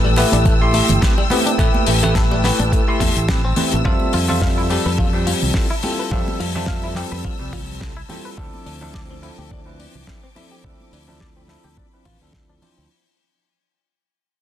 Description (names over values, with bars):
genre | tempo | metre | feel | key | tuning
nu-disco, nu disco | 106 BPM | 4/4 | swing 55% on 16ths | unclear | A4 = 442 Hz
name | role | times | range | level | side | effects
bell-like tine electric piano | accompaniment | 0.0-12.9 s | F3 to C6 | -22 LUFS | equal | lush chorus, sidechain pumping, low-pass filter, tape echo
warm symphonic violin section | sustained chords | 0.0-12.9 s | C4 to E6 | -28 LUFS | left 2 dB | sidechain pumping
direct-recorded clean electric guitar | riff | 0.0-12.8 s | D3 to F5 | -28 LUFS | left 3 dB | lush chorus, low-pass filter, tape echo
fingered electric bass | bass | 0.0-12.9 s | G1 to F2 | -22 LUFS | equal | none
damped 70s drum kit | drums | 0.2-12.7 s | hi-hat, snare drum | -25 LUFS | left 4 dB | none
congas | percussion | 0.2-12.7 s | none | -28 LUFS | right 3 dB | none
electronic kick drum | drums | 0.5-12.5 s | none | -20 LUFS | equal | none
room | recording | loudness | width
light reverb, small room reverb | dense, heavily limited modern master | -15 LUFS | side -11 dB against mid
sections
0.0-12.9 A section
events
fade-out 0.0-12.9; filter sweep on tine electric piano 0.0-12.9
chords
0.0 Am7; 3.8 Fmaj7; 8.4 Dm7